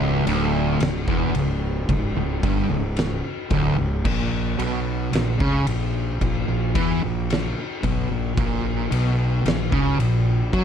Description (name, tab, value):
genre	stoner and doom metal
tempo	56 BPM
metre	4/4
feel	straight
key	unclear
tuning	A4 = 439 Hz
part	fuzz guitar	riff	0.0-10.6 s	C#2 to F#3	-22 LUFS	equal	distortion
part	fuzz fingered electric bass	bass	0.0-10.6 s	C#1 to F#2	-26 LUFS	equal	overdrive
part	oversized low-tuned drum kit	drums	0.3-10.6 s	crash cymbal, kick drum, ride cymbal, snare drum	-26 LUFS	equal	none
room	light reverb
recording	dark, warm production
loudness	-20 LUFS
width	side -8 dB against mid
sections	0.0-10.6 A section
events	none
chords	0.0 C#m; 4.1 A#m